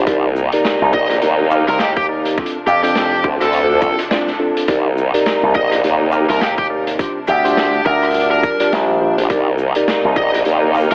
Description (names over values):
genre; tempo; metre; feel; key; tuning
glitch hop; 104 BPM; 4/4; swing 58% on 16ths; C dorian; A4 = 440 Hz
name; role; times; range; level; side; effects
dark symphonic string section; sustained chords; 0.0-10.9 s; C3 to Eb4; -26 LUFS; equal; sidechain pumping
mellow tine electric piano; stabs; 0.0-10.9 s; C4 to F5; -21 LUFS; equal; phaser, sidechain pumping
formant-sweep wobble bass; bass; 0.0-10.9 s; Bb1 to Eb2; -19 LUFS; equal; chorus, overdrive
electronic kick drum; drums; 0.1-10.3 s; none; -23 LUFS; equal; none
raw garage drum kit; drums; 0.1-10.9 s; hi-hat, rim click, shaker, snare drum; -26 LUFS; equal; none
slap bass with an envelope filter; bass; 0.8-10.9 s; Bb1 to F2; -20 LUFS; equal; none
smooth overdriven lead guitar; melody; 0.9-10.9 s; G4 to Eb5; -22 LUFS; equal; digital delay
room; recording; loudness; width
light reverb, small room ambience; vinyl crackle, telephone sound; -16 LUFS; mono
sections
0.0-10.9 A section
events
break 4.1-4.7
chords
0.1 Cm7; 2.4 Dm7; 4.7 Cm7; 7.0 Bb69; 9.3 Cm7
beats
| 0.07 0.65 1.22 1.80 | 2.38 2.96 3.53 4.11 | 4.69 5.26 5.84 6.42 | 6.99 7.57 8.15 8.72 | 9.30 9.88 10.46